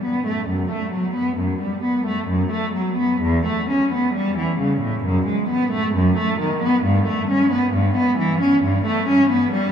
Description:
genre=classical, baroque-style suite movement for unaccompanied cello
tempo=67 BPM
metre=4/4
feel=rubato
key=unclear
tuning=A4 = 441 Hz
part: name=warm cello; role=solo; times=0.0-9.7 s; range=E2 to C#4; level=-18 LUFS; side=equal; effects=none
room=wet cathedral reverb, RT60 7.1 s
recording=in a vast, echoing space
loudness=-18 LUFS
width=side -8 dB against mid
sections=0.0-9.7 A section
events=none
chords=none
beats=0.48 1.39 2.28 | 3.22 4.14 5.03 5.94 | 6.84 7.74 8.63 9.52

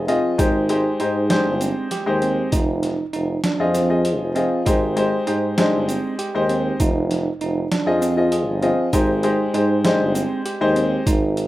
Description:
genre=progressive instrumental, band music in an uneven meter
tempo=197 BPM (eighths)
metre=7/8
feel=straight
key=Ab lydian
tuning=A4 = 440 Hz
part: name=clear grand piano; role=accompaniment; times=0.0-11.1 s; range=F3 to Eb5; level=-20 LUFS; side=left 2 dB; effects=none
part: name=bell-like tine electric piano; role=arpeggios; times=0.0-11.5 s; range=C4 to Ab4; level=-25 LUFS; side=right 4 dB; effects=digital delay
part: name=warm tuba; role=bass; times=0.0-11.5 s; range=F1 to Ab2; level=-23 LUFS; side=equal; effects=none
part: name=boom bap sampler-style drum kit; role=drums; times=0.1-11.5 s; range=hi-hat, kick drum, snare drum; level=-24 LUFS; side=equal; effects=overdrive
part: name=tube shaker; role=percussion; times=0.4-11.5 s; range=none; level=-38 LUFS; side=right 4 dB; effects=none
room=light reverb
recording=rough home demo mix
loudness=-17 LUFS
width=side -15 dB against mid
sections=0.0-11.5 A section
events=none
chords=0.4 Abmaj7; 2.5 Fm7; 4.7 Abmaj7; 6.8 Fm7; 8.9 Abmaj7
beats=0.09 | 0.39 0.70 1.00 1.31 1.62 1.92 2.23 | 2.53 2.84 3.14 3.45 3.75 4.06 4.36 | 4.67 4.97 5.28 5.58 5.89 6.19 6.50 | 6.80 7.11 7.41 7.71 8.02 8.32 8.63 | 8.93 9.24 9.54 9.85 10.15 10.46 10.76 | 11.06 11.37

